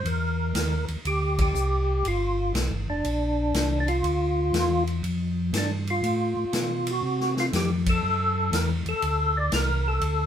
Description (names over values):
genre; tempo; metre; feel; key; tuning
soul jazz organ trio; 120 BPM; 4/4; swing 67% on 8ths; unclear; A4 = 441 Hz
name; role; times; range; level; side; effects
percussive tonewheel organ; melody; 0.0-10.3 s; D4 to D5; -26 LUFS; equal; slow rotary speaker, chorus vibrato
mellow tonewheel organ; bass; 0.0-10.3 s; F1 to C3; -26 LUFS; equal; slow rotary speaker
swinging big-band drum kit; drums; 0.1-10.2 s; hi-hat, kick drum, ride cymbal, snare drum; -31 LUFS; left 1 dB; none
room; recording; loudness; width
wet studio reverb, RT60 0.5 s; band playing live in one room; -23 LUFS; side -9 dB against mid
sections
0.0-10.3 A section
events
band accent 1.3, 7.8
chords
0.0 C7#9; 2.0 Gm7; 6.0 D7#9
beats
| 0.05 0.55 1.05 1.55 | 2.04 2.54 3.04 3.54 | 4.04 4.54 5.04 5.53 | 6.03 6.53 7.03 7.53 | 8.03 8.53 9.02 9.52 | 10.02